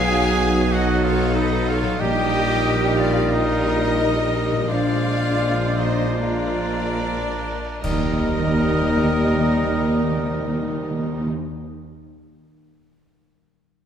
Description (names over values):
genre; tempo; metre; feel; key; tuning
classical, slow romantic movement for symphony orchestra; 35-50 BPM; 4/4; rubato; Eb major; A4 = 440 Hz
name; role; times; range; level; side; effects
rich symphonic violin section; melody; 0.0-11.3 s; D5 to Ab5; -30 LUFS; left 3 dB; none
bright clarinet; second line; 0.0-11.3 s; Bb4 to C5; -31 LUFS; left 1 dB; none
clear symphonic violin section; second line; 0.0-11.3 s; Bb4 to F5; -34 LUFS; left 2 dB; none
silver concert flute; second line; 0.0-11.3 s; Bb4 to F5; -32 LUFS; left 2 dB; none
warm oboe; second line; 0.0-11.3 s; D5 to D#5; -33 LUFS; right 1 dB; none
rich symphonic viola section; accompaniment; 0.0-11.3 s; F#3 to G4; -30 LUFS; right 1 dB; none
warm bassoon; accompaniment; 0.0-11.3 s; F#3 to Ab3; -31 LUFS; right 2 dB; none
warm French horn section; sustained chords; 0.0-11.3 s; F#3 to D#4; -28 LUFS; left 5 dB; none
concert harp; arpeggios; 0.0-11.7 s; Bb2 to D#5; -33 LUFS; left 9 dB; none
warm trumpet; stabs; 0.0-11.3 s; D4 to Bb4; -28 LUFS; right 2 dB; none
mellow tuba; bass; 0.0-11.3 s; Bb1 to Eb2; -27 LUFS; right 3 dB; none
rich symphonic cello section; bass; 0.0-11.3 s; Eb2 to A4; -29 LUFS; right 2 dB; none
rich symphonic double bass section; bass; 0.0-11.3 s; Bb1 to Eb2; -27 LUFS; right 2 dB; none
cymbal swell, clash cymbals and concert bass drum; percussion; 2.0-11.0 s; none; -35 LUFS; equal; none
timpani; percussion; 2.0-11.3 s; Bb2 to Eb3; -25 LUFS; left 1 dB; none
room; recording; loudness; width
moderate scoring stage reverb, RT60 1.9 s; none; -18 LUFS; side -8 dB against mid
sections
0.0-7.8 A section; 7.8-13.9 B section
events
slowing down 0.0-7.8; band accent 7.8-9.5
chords
0.0 B7; 2.0 Eb/Bb; 4.7 Bb9; 7.8 Eb